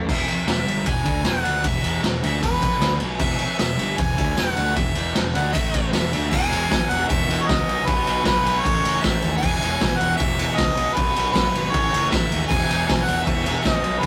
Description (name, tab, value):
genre	garage rock duo or trio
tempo	154 BPM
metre	4/4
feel	straight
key	E major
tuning	A4 = 441 Hz
part	thick fuzz guitar	riff	0.0-14.1 s	E2 to D4	-28 LUFS	equal	distortion
part	fuzz fingered electric bass	bass	0.0-14.1 s	E1 to D#2	-31 LUFS	equal	overdrive
part	bright harmonica	melody	0.1-14.1 s	B4 to G#5	-26 LUFS	equal	overdrive
part	raw garage drum kit	drums	0.1-14.1 s	crash cymbal, kick drum, ride cymbal, snare drum	-25 LUFS	equal	none
room	moderate studio reverb, RT60 0.7 s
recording	rough rehearsal-room recording, tube saturation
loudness	-21 LUFS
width	mono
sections	0.1-6.3 A section; 6.3-14.1 B section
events	none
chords	0.1 E5; 5.5 A5; 5.9 E5; 6.3 E; 7.7 B5; 8.6 A; 9.4 E; 10.8 B5; 11.7 A; 12.5 E